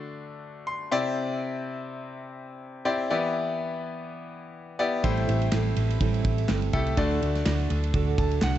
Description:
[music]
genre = piano-driven pop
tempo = 124 BPM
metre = 4/4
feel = swing 56% on 16ths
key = unclear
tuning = A4 = 439 Hz
[part]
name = bright concert grand piano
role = accompaniment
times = 0.0-8.6 s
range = A2 to C6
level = -29 LUFS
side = left 3 dB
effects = none
[part]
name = fingerpicked steel-string acoustic guitar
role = riff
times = 5.0-8.6 s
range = A2 to A4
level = -30 LUFS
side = right 9 dB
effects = none
[part]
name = vintage muted picked electric bass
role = bass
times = 5.0-8.6 s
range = G1 to D2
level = -26 LUFS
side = equal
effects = none
[part]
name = modern studio drum kit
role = drums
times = 5.0-8.6 s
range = handclaps, kick drum, ride cymbal, snare drum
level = -28 LUFS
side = equal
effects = none
[sound]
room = light reverb, small room ambience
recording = nothing above 8.0 kHz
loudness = -24 LUFS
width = side -12 dB against mid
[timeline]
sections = 0.0-8.6 A section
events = grand piano fill 0.4-1.2, 7.9-8.6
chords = 0.0 D; 0.9 Cadd9; 3.1 Em7; 5.0 Am7; 7.0 D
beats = 0.20 0.69 | 1.17 1.65 2.14 2.62 | 3.10 3.59 4.07 4.56 | 5.04 5.53 6.01 6.49 | 6.98 7.46 7.94 8.43

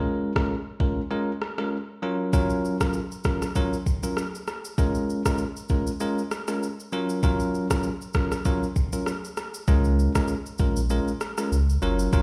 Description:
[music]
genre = afrobeats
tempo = 98 BPM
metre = 4/4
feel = swing 55% on 16ths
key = Db major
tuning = A4 = 440 Hz
[part]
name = bell-like tine electric piano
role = accompaniment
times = 0.0-12.2 s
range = Gb3 to Bb4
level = -29 LUFS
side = equal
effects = none
[part]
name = glitchy drum kit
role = drums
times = 0.4-12.2 s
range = kick drum, rim click, shaker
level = -29 LUFS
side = equal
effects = none
[part]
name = warm sub bass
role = bass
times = 9.7-12.2 s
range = Gb1 to Db2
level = -25 LUFS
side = equal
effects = none
[sound]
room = little or no reverb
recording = played on a big sound system in a bare room, stone room reverb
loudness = -26 LUFS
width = mono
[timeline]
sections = 0.0-12.2 A section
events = none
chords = 0.0 Db6; 2.0 Gbmaj7; 4.8 Db6; 6.9 Gbmaj7; 9.7 Db6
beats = 0.49 1.11 1.72 | 2.33 2.94 3.56 4.17 | 4.78 5.39 6.01 6.62 | 7.23 7.84 8.45 9.07 | 9.68 10.29 10.90 11.52 | 12.13

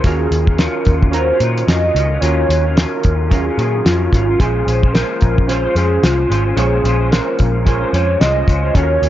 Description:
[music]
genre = indie pop, bedroom pop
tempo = 110 BPM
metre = 4/4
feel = swing 60% on 16ths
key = Bb minor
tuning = A4 = 440 Hz
[part]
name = warbly nostalgic lead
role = melody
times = 0.0-9.1 s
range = F4 to Eb5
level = -19 LUFS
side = equal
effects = tremolo, analog chorus
[part]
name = electric guitar through a small old amp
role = accompaniment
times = 0.0-9.1 s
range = Bb2 to C5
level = -22 LUFS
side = left 2 dB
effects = ensemble chorus, vibrato effect
[part]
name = warbly lo-fi synth keys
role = accompaniment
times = 0.0-9.1 s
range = Gb3 to Db5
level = -23 LUFS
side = right 5 dB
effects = chorus
[part]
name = vintage muted picked electric bass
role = bass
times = 0.0-9.1 s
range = Ab1 to Bb2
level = -17 LUFS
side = equal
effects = none
[part]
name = cloth-damped thuddy drum kit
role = drums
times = 0.0-9.1 s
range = hi-hat, kick drum, snare drum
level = -15 LUFS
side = equal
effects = none
[sound]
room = studio ambience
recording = nothing above 7.5 kHz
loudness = -12 LUFS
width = side -12 dB against mid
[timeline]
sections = 0.0-9.1 A section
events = none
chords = 0.0 Ebm9; 4.4 Bbm9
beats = | 0.04 0.59 1.13 1.68 | 2.22 2.77 3.31 3.86 | 4.40 4.94 5.49 6.03 | 6.58 7.12 7.66 8.21 | 8.75

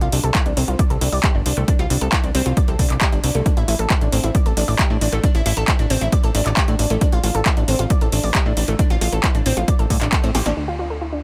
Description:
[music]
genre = uplifting trance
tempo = 135 BPM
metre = 4/4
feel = straight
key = unclear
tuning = A4 = 440 Hz
[part]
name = analog pluck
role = arpeggios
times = 0.0-11.2 s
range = A3 to D5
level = -26 LUFS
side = equal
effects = chorus, sidechain pumping, delay
[part]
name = plucky analog bass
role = bass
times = 0.0-11.2 s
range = G1 to A2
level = -23 LUFS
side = equal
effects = sidechain pumping
[part]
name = punchy analog drum machine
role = drums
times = 0.0-10.7 s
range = crash cymbal, handclaps, hi-hat, snare drum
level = -26 LUFS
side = equal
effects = overdrive, low-pass filter on hats, low-pass filter on cymbals, low-pass filter on snare
[part]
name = electronic kick drum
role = drums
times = 0.3-10.2 s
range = none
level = -21 LUFS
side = equal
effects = overdrive
[sound]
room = little or no reverb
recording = none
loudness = -18 LUFS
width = mono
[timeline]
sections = 0.0-10.6 A section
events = band accent 10.1; drum fill 10.3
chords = 0.0 C5; 3.5 A5; 7.0 F/A; 10.6 Dm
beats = 0.35 0.79 1.24 | 1.68 2.12 2.57 3.01 | 3.46 3.90 4.35 4.79 | 5.24 5.68 6.12 6.57 | 7.01 7.46 7.90 8.35 | 8.79 9.24 9.68 10.12 | 10.57 11.01

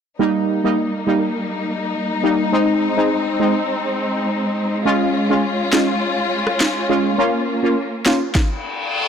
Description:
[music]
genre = dancehall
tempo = 103 BPM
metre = 4/4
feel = straight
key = unclear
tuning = A4 = 440 Hz
[part]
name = synth brass stab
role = accompaniment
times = 0.2-8.2 s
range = G3 to F4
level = -18 LUFS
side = equal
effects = chorus
[part]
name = warm studio string section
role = sustained chords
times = 0.2-8.3 s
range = G3 to F4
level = -21 LUFS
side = left 2 dB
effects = sidechain pumping
[part]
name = afro-pop drum kit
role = drums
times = 5.7-8.5 s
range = kick drum, rim click, snare drum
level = -19 LUFS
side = equal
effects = overdrive
[part]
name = reverse cymbal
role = sound effects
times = 8.5-9.1 s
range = none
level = -21 LUFS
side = left 3 dB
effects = none
[sound]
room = moderate plate reverb, RT60 2.1 s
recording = blown-out, overdriven recording, overdrive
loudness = -16 LUFS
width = side -7 dB against mid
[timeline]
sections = 0.2-9.1 A section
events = reverse cymbal 8.5-9.1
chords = 0.2 Eb; 2.5 Ab; 4.9 Db; 7.2 Bbm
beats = | 0.20 0.78 1.36 1.94 | 2.52 3.11 3.69 4.27 | 4.86 5.44 6.02 6.60 | 7.18 7.77 8.35 8.93

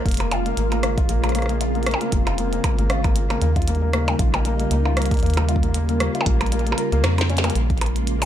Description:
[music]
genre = IDM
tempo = 116 BPM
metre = 4/4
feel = swing 56% on 16ths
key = Bb dorian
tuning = A4 = 440 Hz
[part]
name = soft string machine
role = sustained chords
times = 0.0-8.3 s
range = Db3 to F4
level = -26 LUFS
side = equal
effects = ensemble chorus, vintage 12-bit sampler grit, sidechain pumping
[part]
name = bubbling stepped-filter texture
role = texture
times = 0.0-7.6 s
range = F4 to F5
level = -37 LUFS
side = equal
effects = none
[part]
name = felt-muted upright piano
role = arpeggios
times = 0.1-7.5 s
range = Bb3 to Bb4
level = -27 LUFS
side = left 4 dB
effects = low-pass filter, analog delay
[part]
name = metallic FM bass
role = bass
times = 0.1-8.3 s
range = F1 to F2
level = -22 LUFS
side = equal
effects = none
[part]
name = electronic kick drum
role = drums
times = 0.1-7.8 s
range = none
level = -22 LUFS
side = equal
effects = small room ambience
[part]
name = glitchy drum kit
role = drums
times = 0.1-8.3 s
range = hi-hat, percussion blips, rim click, snare drum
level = -26 LUFS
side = right 1 dB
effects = small room ambience, analog delay
[sound]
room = light reverb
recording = echo-heavy mix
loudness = -18 LUFS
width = side -11 dB against mid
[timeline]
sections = 0.0-7.6 A section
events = kick drops out 6.5-7.6; drum fill 7.0-7.6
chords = 0.0 Bbm7; 3.4 Eb7; 7.6 Bbm7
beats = 0.31 0.83 | 1.35 1.86 2.38 2.90 | 3.42 3.93 4.45 4.97 | 5.49 6.00 6.52 7.04 | 7.55 8.07

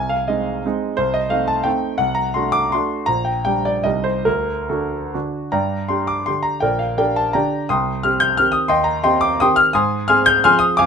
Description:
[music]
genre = classical, romantic triple-time dance for piano with dotted rhythms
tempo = 128-193 BPM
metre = 3/4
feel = rubato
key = G minor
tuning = A4 = 439 Hz
[part]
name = clear concert grand piano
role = solo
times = 0.0-10.9 s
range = Bb1 to G6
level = -16 LUFS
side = equal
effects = none
[sound]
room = light reverb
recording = minimal, uncompressed stereo recording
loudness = -16 LUFS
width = side -6 dB against mid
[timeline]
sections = 0.0-5.5 A section; 5.5-10.9 B section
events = none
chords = 0.0 Ab/C; 1.0 Adim/C; 2.0 D7/C; 3.1 Gm/Bb; 3.9 Cm; 4.3 D; 5.5 Gm; 6.6 Gm/Bb; 7.7 Cm; 8.7 Cm/Eb; 9.8 Ab6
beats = 0.29 0.65 | 0.98 1.32 1.67 | 2.01 2.37 2.73 | 3.08 3.46 3.85 | 4.26 4.70 5.14 | 5.54 5.91 6.28 | 6.62 6.98 7.34 | 7.69 8.04 8.38 | 8.70 9.04 9.41 | 9.76 10.11 10.46 | 10.80

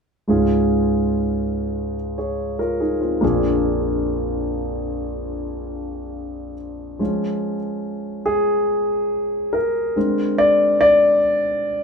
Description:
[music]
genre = pop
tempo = 71 BPM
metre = 4/4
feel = straight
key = Db major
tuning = A4 = 440 Hz
[part]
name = warm concert grand piano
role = accompaniment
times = 0.3-11.8 s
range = Bb1 to D5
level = -18 LUFS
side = equal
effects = none
[sound]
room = moderate small room reverb, RT60 0.6 s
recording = band playing live in one room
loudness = -18 LUFS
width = side -5 dB against mid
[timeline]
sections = 0.3-7.0 A section; 7.0-11.8 B section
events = grand piano solo 7.0-11.8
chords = 0.3 Db; 3.2 Bb7; 7.0 Db; 10.0 Bb9/D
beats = | 0.28 1.12 1.97 2.80 | 3.64 4.47 5.31 6.15 | 7.00 7.85 8.69 9.54 | 10.38 11.22

